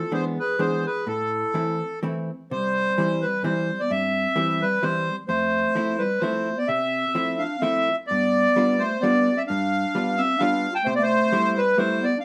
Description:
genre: musette waltz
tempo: 129 BPM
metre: 3/4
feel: swing 54% on 8ths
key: C major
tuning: A4 = 440 Hz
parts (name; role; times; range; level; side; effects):
- accordion; melody; 0.0-12.2 s; A4 to A5; -25 LUFS; equal; none
- dark clarinet; second line; 0.0-12.2 s; G3 to G#4; -30 LUFS; equal; none
- vintage hollow-body jazz guitar; accompaniment; 0.0-12.0 s; F2 to F4; -30 LUFS; equal; none
room: wet studio reverb, RT60 0.6 s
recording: none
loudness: -23 LUFS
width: mono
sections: 0.0-2.5 A section; 2.5-12.2 B section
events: none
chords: 0.1 E7; 1.1 Am; 2.5 C; 5.3 Fmaj7; 8.1 G7; 10.9 C6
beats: 0.12 0.59 | 1.06 1.54 2.03 | 2.51 2.98 3.45 | 3.91 4.38 4.84 | 5.30 5.76 6.22 | 6.69 7.16 7.63 | 8.10 8.57 9.03 | 9.49 9.96 10.41 | 10.87 11.34 11.80

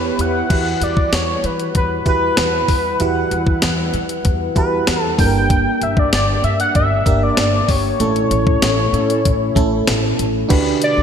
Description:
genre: 1980s-style pop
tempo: 96 BPM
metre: 4/4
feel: straight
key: unclear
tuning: A4 = 441 Hz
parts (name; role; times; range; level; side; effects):
- octave-doubled lead; melody; 0.0-11.0 s; B4 to G5; -20 LUFS; left 1 dB; chorus
- FM electric piano; accompaniment; 0.0-11.0 s; G2 to C#5; -21 LUFS; right 4 dB; chorus
- upright bass; bass; 0.0-11.0 s; G1 to E3; -22 LUFS; left 1 dB; none
- mellow synth brass; stabs; 0.2-0.5, 8.6-9.2 s; C#4 to B4; -26 LUFS; left 2 dB; chorus
- clean 12-bit digital drum machine; drums; 0.2-11.0 s; crash cymbal, hi-hat, kick drum, snare drum; -19 LUFS; left 1 dB; gated reverb
- sweeping resonant pad; sustained chords; 0.5-11.0 s; B2 to F#5; -26 LUFS; left 2 dB; wide subtle chorus
room: moderate lush hall reverb, RT60 2.9 s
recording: bright 1980s-style digital production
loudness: -14 LUFS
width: side -8 dB against mid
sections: 0.5-10.5 A section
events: band accent 8.0-10.5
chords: 0.0 Em; 0.5 Emadd9; 5.2 Gm; 8.0 A; 10.5 Gmaj7/D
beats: | 0.50 1.13 1.75 2.38 | 3.00 3.63 4.25 4.88 | 5.50 6.13 6.75 7.38 | 8.00 8.63 9.25 9.88 | 10.50

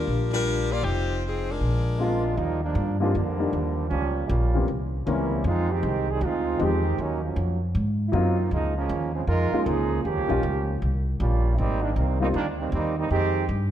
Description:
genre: jazz, big band swing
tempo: 156 BPM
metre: 4/4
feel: swing 65% on 8ths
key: Eb major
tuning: A4 = 441 Hz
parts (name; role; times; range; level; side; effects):
- warm saxophone section; melody; 0.0-2.3 s; F3 to D5; -27 LUFS; left 3 dB; none
- warm baby grand piano; accompaniment; 0.0-12.3 s; Fb3 to Bb4; -28 LUFS; left 3 dB; none
- upright bass; bass; 0.0-13.7 s; F1 to Ab2; -25 LUFS; equal; none
- clear trombone section; second line; 2.0-13.5 s; Db3 to Bb4; -27 LUFS; right 4 dB; none
room: light reverb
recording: dark, warm production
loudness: -22 LUFS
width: side -11 dB against mid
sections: 0.0-2.4 A section; 2.4-13.7 B section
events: trombone section solo 2.4-13.7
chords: 0.0 Ebmaj9 (rootless); 0.8 Fm7; 1.6 Bb7; 2.4 Ebmaj9; 3.9 Gm7b5; 4.7 C7b9; 5.4 Fm9; 7.0 Ebm9; 7.7 Ab13; 8.5 Db69; 10.0 Eb9; 11.6 Abmaj9; 13.1 Fm9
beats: 0.07 0.45 | 0.83 1.22 1.60 1.99 | 2.37 2.76 3.14 3.53 | 3.91 4.29 4.68 5.06 | 5.45 5.83 6.21 6.60 | 6.98 7.37 7.75 8.13 | 8.52 8.90 9.28 9.66 | 10.05 10.43 10.81 11.20 | 11.58 11.96 12.34 12.73 | 13.11 13.49

